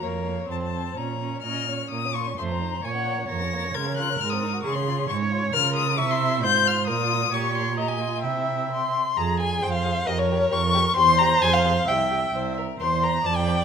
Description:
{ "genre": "quick classical-period movement for string quartet", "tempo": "132 BPM", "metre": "2/4", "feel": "straight", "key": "Bb minor, F minor from 5.5 s", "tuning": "A4 = 441 Hz", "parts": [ { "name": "warm violin", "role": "melody", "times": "0.0-13.5 s", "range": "G4 to Bb6", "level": "-28 LUFS", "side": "left 9 dB", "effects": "none" }, { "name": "warm violin", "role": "second line", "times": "0.0-13.6 s", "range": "Ab3 to Db6", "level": "-25 LUFS", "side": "left 4 dB", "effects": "none" }, { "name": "warm viola", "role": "accompaniment", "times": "0.0-13.6 s", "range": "Bb3 to E5", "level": "-28 LUFS", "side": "right 3 dB", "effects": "none" }, { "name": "dark cello", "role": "bass", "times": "0.0-13.6 s", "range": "C2 to Db3", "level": "-27 LUFS", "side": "right 6 dB", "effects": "none" } ], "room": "moderate recital hall reverb, RT60 1.3 s", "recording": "minimal, uncompressed stereo recording", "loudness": "-21 LUFS", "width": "side -7 dB against mid", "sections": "0.0-1.9 A section; 1.9-9.2 B section; 9.2-13.6 C section", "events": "none", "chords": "0.0 Bbm/F; 0.5 F; 1.0 Bbm; 2.4 F7; 2.8 Bbm; 3.7 Db; 4.2 Ab7; 4.6 Db; 5.5 Bbm/Db; 6.0 C; 6.4 Fm/Ab; 6.9 Bb5; 7.3 Gdim/Bb; 8.2 C; 9.2 Fm; 10.1 Gm7b5/F; 11.0 C/E; 11.4 Fm; 11.9 C; 12.8 C7/E" }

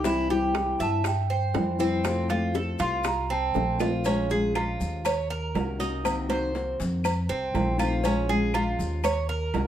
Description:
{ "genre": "latin, Cuban son and guajira", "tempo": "120 BPM", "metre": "4/4", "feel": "straight", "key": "Bb minor", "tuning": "A4 = 441 Hz", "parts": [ { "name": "nylon-string guitar", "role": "accompaniment", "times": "0.0-9.7 s", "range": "C3 to Gb4", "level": "-29 LUFS", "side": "left 4 dB", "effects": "none" }, { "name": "Cuban tres", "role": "arpeggios", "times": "0.0-9.7 s", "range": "C4 to E5", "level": "-29 LUFS", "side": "right 3 dB", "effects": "none" }, { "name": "upright bass", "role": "bass", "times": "0.0-9.7 s", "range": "Bb1 to G2", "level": "-30 LUFS", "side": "equal", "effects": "none" }, { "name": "bongos and cowbell", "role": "percussion", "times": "0.0-9.7 s", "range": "none", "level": "-34 LUFS", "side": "left 6 dB", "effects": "none" }, { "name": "maracas", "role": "percussion", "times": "0.0-9.7 s", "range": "none", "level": "-46 LUFS", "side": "left 6 dB", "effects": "none" }, { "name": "claves", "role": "percussion", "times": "0.5-9.3 s", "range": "none", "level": "-41 LUFS", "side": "left 5 dB", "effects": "none" }, { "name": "timbales and agogo bells", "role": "percussion", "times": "0.5-9.7 s", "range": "none", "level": "-32 LUFS", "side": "right 4 dB", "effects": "none" }, { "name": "large celesta", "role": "melody", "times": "0.8-3.8 s", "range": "G5 to C6", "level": "-30 LUFS", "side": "right 6 dB", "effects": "plate reverb" } ], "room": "moderate studio reverb, RT60 0.8 s", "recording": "none", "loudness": "-24 LUFS", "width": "side -10 dB against mid", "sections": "0.0-4.0 A section; 4.0-9.7 B section", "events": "drum fill 3.5-4.0", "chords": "0.1 C; 2.0 F; 4.0 Bbm7; 5.0 Ebm7; 6.0 Cm7b5; 7.0 F7; 8.0 Bbm7; 9.0 Ebm7" }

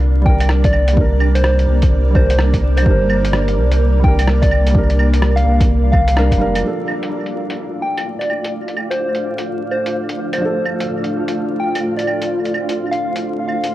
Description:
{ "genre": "future garage", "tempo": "127 BPM", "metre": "4/4", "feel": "swing 63% on 16ths", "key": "unclear", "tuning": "A4 = 441 Hz", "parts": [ { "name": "felt-muted upright piano", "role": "accompaniment", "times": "0.0-13.7 s", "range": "F3 to Bb4", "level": "-24 LUFS", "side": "right 2 dB", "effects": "sidechain pumping, tape echo" }, { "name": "granular cloud pad", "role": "sustained chords", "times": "0.0-13.7 s", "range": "G3 to F5", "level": "-22 LUFS", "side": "equal", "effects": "built-in reverb, vintage 12-bit sampler grit, sidechain pumping" }, { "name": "warm sub bass", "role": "bass", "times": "0.0-6.6 s", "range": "F1 to C2", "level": "-14 LUFS", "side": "equal", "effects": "sidechain pumping" }, { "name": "soft struck synth lead", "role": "melody", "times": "0.3-13.7 s", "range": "C5 to G5", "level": "-22 LUFS", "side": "equal", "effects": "chorus, tremolo, dub echo" }, { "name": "electronic kick drum", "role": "drums", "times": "0.3-6.4 s", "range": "none", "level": "-15 LUFS", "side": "equal", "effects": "studio reverb" }, { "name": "lo-fi sampler-style drum kit", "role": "drums", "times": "0.4-13.7 s", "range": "claves, hi-hat, rim click", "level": "-24 LUFS", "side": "right 1 dB", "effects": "low-pass filter on hats, studio reverb, low-pass filter on perc, low-pass filter on snare, tape echo" }, { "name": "flickering grainy texture", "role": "texture", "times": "7.1-13.7 s", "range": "F4 to F5", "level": "-30 LUFS", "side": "left 1 dB", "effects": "built-in reverb" } ], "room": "light reverb", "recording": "echo-heavy mix, vinyl crackle", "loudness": "-14 LUFS", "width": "side -15 dB against mid", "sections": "0.0-6.6 A section; 6.6-13.7 B section", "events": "band accent 6.2; filter sweep on ambient pad 6.6-13.7", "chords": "0.0 Gm; 6.6 Dm" }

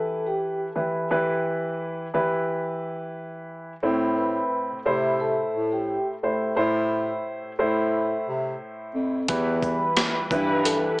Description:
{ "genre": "hip hop, boom-bap hip-hop", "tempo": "88 BPM", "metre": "4/4", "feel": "swing 56% on 16ths", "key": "E minor", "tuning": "A4 = 440 Hz", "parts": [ { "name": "vibraphone with soft mallets", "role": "melody", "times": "0.0-11.0 s", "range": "G4 to B5", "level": "-28 LUFS", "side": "equal", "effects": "high-pass filter, low-pass filter, tape echo" }, { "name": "dark grand piano", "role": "accompaniment", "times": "0.0-11.0 s", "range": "A2 to C5", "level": "-25 LUFS", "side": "equal", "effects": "high-pass filter, low-pass filter" }, { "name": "dark bass clarinet", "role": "bass", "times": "3.8-10.9 s", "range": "E2 to C3", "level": "-27 LUFS", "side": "equal", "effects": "none" }, { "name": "warm analog pad", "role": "sustained chords", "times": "9.3-11.0 s", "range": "E3 to B4", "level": "-33 LUFS", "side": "right 1 dB", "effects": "none" }, { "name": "boom bap sampler-style drum kit", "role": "drums", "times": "9.3-10.8 s", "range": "hi-hat, kick drum, rim click, shaker, snare drum", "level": "-25 LUFS", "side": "equal", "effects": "none" }, { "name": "dark studio string section", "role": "stabs", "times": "10.3-10.8 s", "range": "G3 to B4", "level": "-29 LUFS", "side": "left 1 dB", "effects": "high-pass filter, low-pass filter, tape echo" } ], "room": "little or no reverb", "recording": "small speaker sound", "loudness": "-22 LUFS", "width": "side -24 dB against mid", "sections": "0.0-9.3 A section; 9.3-11.0 B section", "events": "none", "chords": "0.0 Em; 3.8 Am; 9.3 Em" }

